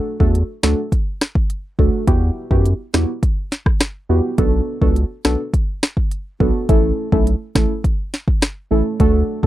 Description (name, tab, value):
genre	dancehall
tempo	104 BPM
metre	4/4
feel	straight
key	unclear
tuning	A4 = 438 Hz
part	deep mellow chord stab	accompaniment	0.0-9.5 s	A3 to A4	-20 LUFS	right 1 dB	chorus
part	saturated sub bass	bass	0.2-9.5 s	A1 to F#2	-17 LUFS	equal	none
part	afro-pop drum kit	drums	0.2-9.5 s	hi-hat, kick drum, rim click, snare drum	-17 LUFS	equal	none
room	little or no reverb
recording	none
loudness	-16 LUFS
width	side -14 dB against mid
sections	0.0-9.5 A section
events	none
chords	0.0 D; 2.1 Emadd9; 4.4 Bm7; 6.7 A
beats	0.35 0.92 1.50 | 2.08 2.65 3.23 3.81 | 4.38 4.96 5.54 6.12 | 6.69 7.27 7.85 8.42 | 9.00